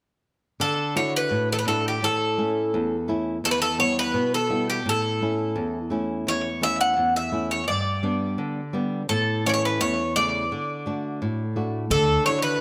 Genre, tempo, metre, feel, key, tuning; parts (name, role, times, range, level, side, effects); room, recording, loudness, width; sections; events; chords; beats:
greek folk; 85 BPM; 2/4; straight; D major; A4 = 438 Hz
Greek bouzouki; melody; 0.6-12.6 s; G4 to F#5; -26 LUFS; equal; slapback echo
flamenco guitar; accompaniment; 0.6-12.6 s; E2 to F#4; -29 LUFS; equal
upright bass; bass; 11.9-12.2 s; D2; -27 LUFS; equal
light reverb; -24 LUFS; mono
0.6-11.9 A section
0.6 Dadd9; 2.0 A; 3.4 Em; 4.8 A; 7.7 G; 9.1 A; 10.5 D; 11.9 Dadd9
| 0.60 1.31 | 2.02 2.73 | 3.43 4.14 | 4.85 5.55 | 6.26 6.97 | 7.67 8.38 | 9.09 9.79 | 10.50 11.20 | 11.91